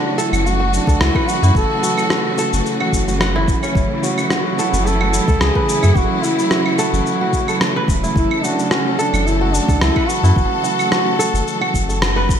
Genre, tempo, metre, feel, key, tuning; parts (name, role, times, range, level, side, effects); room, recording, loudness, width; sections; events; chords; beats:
organic downtempo; 109 BPM; 4/4; swing 54% on 16ths; F# minor; A4 = 440 Hz
mellow duduk; melody; 0.0-12.0 s; C#4 to A4; -21 LUFS; right 1 dB; ping-pong delay
clear studio string section; sustained chords; 0.0-12.4 s; C#3 to A4; -21 LUFS; right 1 dB; sidechain pumping
kora; arpeggios; 0.0-12.4 s; C#4 to F#5; -24 LUFS; right 1 dB; ping-pong delay
electronic shaker, claves and rim click; drums; 0.2-12.4 s; -22 LUFS; equal; gated reverb
warm sub bass; bass; 0.3-12.4 s; E1 to F#2; -18 LUFS; equal; sidechain pumping
electronic kick drum; drums; 0.9-12.4 s; -19 LUFS; equal
light reverb; bright 1980s-style digital production; -14 LUFS; side -8 dB against mid
0.0-12.4 A section
band accent 12.0
0.0 F#m7
0.45 1.00 | 1.55 2.10 2.66 3.21 | 3.76 4.31 4.86 5.41 | 5.96 6.51 7.06 7.61 | 8.16 8.71 9.26 9.81 | 10.36 10.91 11.46 12.01